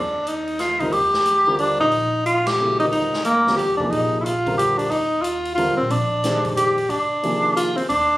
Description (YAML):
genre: modal jazz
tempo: 181 BPM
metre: 3/4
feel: swing 63% on 8ths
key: Eb major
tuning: A4 = 442 Hz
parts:
  - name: breathy alto saxophone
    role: melody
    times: 0.0-8.2 s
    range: Bb3 to G4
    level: -18 LUFS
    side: equal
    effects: none
  - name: upright bass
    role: bass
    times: 0.0-8.2 s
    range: G1 to Bb2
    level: -31 LUFS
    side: equal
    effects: none
  - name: swinging big-band drum kit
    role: drums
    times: 0.3-8.0 s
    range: hi-hat, kick drum, ride cymbal, snare drum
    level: -33 LUFS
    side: left 1 dB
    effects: none
  - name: warm concert grand piano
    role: accompaniment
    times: 0.8-7.7 s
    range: C3 to C5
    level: -26 LUFS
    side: equal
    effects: none
room: moderate studio reverb, RT60 0.6 s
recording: recorded on a phone in the room, studio reverb, compression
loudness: -18 LUFS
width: side -17 dB against mid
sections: 0.0-8.2 A section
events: band accent 2.4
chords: 0.0 Ebmaj9